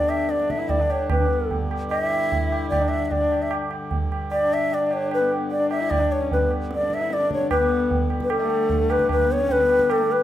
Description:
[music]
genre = indian classical, Hindustani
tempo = 150 BPM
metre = 4/4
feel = straight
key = G raga yaman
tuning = A4 = 442 Hz
[part]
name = mellow hollow bansuri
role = melody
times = 0.0-10.2 s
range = A4 to E5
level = -22 LUFS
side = left 1 dB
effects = plate reverb
[part]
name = dark sarangi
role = second line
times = 0.0-10.2 s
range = A3 to E4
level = -29 LUFS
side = left 4 dB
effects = none
[part]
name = hand-pumped harmonium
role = drone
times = 0.0-10.2 s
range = G2 to D3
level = -31 LUFS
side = left 3 dB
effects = none
[part]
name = tabla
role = percussion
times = 0.1-10.2 s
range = none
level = -26 LUFS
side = right 2 dB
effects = none
[sound]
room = wet small room reverb, RT60 0.5 s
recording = none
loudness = -20 LUFS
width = side -12 dB against mid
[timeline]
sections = 0.0-7.5 A section; 7.5-10.2 B section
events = none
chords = none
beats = 0.29 0.69 | 1.09 1.50 1.90 2.30 | 2.71 3.11 3.51 3.91 | 4.31 4.71 5.11 5.51 | 5.91 6.31 6.71 7.11 | 7.51 7.91 8.30 8.70 | 9.10 9.49 9.89

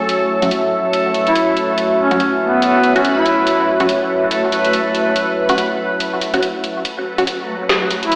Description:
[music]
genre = deep dubstep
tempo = 142 BPM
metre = 4/4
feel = swing 58% on 16ths, half-time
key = F# minor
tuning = A4 = 440 Hz
[part]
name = dark analog pad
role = sustained chords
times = 0.0-8.2 s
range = F#4 to G#5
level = -18 LUFS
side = equal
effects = chorus
[part]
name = backwards swelling texture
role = texture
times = 0.0-8.2 s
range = F#3 to B4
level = -20 LUFS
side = equal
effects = built-in reverb
[part]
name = garage drum kit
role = drums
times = 0.1-8.2 s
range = hi-hat, snare drum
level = -21 LUFS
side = equal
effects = none
[part]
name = filtered dub chord stab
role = stabs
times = 0.4-7.2 s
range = F#3 to F#4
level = -22 LUFS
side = equal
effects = phaser, dub echo
[part]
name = warm duduk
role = melody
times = 1.3-3.8, 8.0-8.2 s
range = B3 to E4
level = -16 LUFS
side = equal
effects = dub echo
[sound]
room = moderate echo chamber reverb, RT60 1.9 s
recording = played on a big sound system in a bare room, stone room reverb, AM radio sound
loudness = -13 LUFS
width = side -31 dB against mid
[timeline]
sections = 0.0-6.8 A section; 6.8-8.2 B section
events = build-up 6.8-8.2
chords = 0.0 F#5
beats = | 0.09 0.51 0.93 1.36 | 1.78 2.20 2.62 3.05 | 3.47 3.89 4.31 4.74 | 5.16 5.58 6.00 6.43 | 6.85 7.27 7.69 8.12

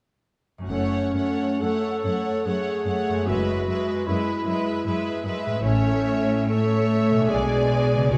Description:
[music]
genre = classical, slow romantic movement for symphony orchestra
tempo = 62-77 BPM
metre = 3/4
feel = rubato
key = F# minor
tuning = A4 = 440 Hz
[part]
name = concert harp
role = arpeggios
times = 0.6-8.2 s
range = F#2 to G#4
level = -32 LUFS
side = equal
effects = none
[part]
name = warm studio violin section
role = melody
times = 0.7-8.2 s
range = E5 to G#5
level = -35 LUFS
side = equal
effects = none
[part]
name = clear studio violin section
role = second line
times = 0.7-8.2 s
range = B4 to D5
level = -32 LUFS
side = equal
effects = none
[part]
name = warm clarinet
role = second line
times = 0.7-8.2 s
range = C#4 to A4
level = -28 LUFS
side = equal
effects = none
[part]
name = rich studio viola section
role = accompaniment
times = 0.7-8.2 s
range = G#3 to A3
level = -31 LUFS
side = equal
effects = none
[part]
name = clear studio cello section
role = bass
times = 0.7-8.2 s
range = F#2 to C#3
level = -31 LUFS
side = equal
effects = none
[part]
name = rich studio double bass section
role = bass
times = 0.7-8.2 s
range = F#1 to C#2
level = -31 LUFS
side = equal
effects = none
[sound]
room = wet scoring stage reverb, RT60 1.8 s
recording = none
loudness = -23 LUFS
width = mono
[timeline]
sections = 0.7-8.2 A section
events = none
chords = 0.7 F#m; 5.6 A; 7.3 G#dim/B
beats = | 0.69 1.62 2.46 | 3.28 4.08 4.86 | 5.65 6.50 7.30 | 8.13

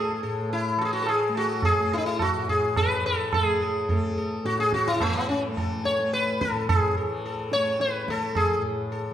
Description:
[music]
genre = indian classical, Hindustani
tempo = 107 BPM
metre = 3/4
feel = straight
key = A raga yaman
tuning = A4 = 444 Hz
[part]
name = sitar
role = melody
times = 0.0-9.1 s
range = A3 to C#5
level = -24 LUFS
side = left 1 dB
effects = none
[part]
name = tanpura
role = drone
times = 0.0-9.1 s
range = A2 to A3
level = -32 LUFS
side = left 1 dB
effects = none
[part]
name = tabla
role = percussion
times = 0.5-8.6 s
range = none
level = -29 LUFS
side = right 3 dB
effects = none
[sound]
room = wet recital hall reverb, RT60 1.7 s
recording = none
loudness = -22 LUFS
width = side -10 dB against mid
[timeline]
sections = 0.0-9.1 A section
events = speeding up 0.0-9.1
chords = none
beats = 0.50 1.07 | 1.63 2.20 2.77 | 3.33 3.89 4.45 | 5.01 5.57 6.13 | 6.69 7.24 7.80 | 8.35 8.90

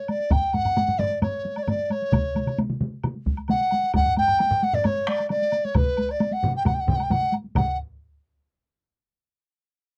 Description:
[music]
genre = japanese traditional, taiko drum ensemble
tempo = 132 BPM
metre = 4/4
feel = straight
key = F# miyako bushi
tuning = A4 = 442 Hz
[part]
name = mellow large dizi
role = melody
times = 0.0-7.8 s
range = B4 to G5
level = -26 LUFS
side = equal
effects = none
[part]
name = taiko ensemble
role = percussion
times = 0.1-7.8 s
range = none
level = -31 LUFS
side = equal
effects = none
[part]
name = woodblock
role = percussion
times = 0.1-7.8 s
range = none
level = -39 LUFS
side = equal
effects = none
[part]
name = taiko ensemble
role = percussion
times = 0.3-8.0 s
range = none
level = -31 LUFS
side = equal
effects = none
[part]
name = taiko ensemble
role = percussion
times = 0.3-7.8 s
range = none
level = -28 LUFS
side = equal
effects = none
[part]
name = taiko ensemble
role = percussion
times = 2.1-8.0 s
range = none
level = -30 LUFS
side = equal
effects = none
[sound]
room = light reverb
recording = dry, close 1970s-style studio recording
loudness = -24 LUFS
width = mono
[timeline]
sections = 0.0-7.6 A section; 7.6-9.4 B section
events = none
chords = none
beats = | 0.31 0.76 1.22 1.67 | 2.13 2.58 3.04 3.49 | 3.94 4.40 4.85 5.30 | 5.76 6.21 6.66 7.11 | 7.57

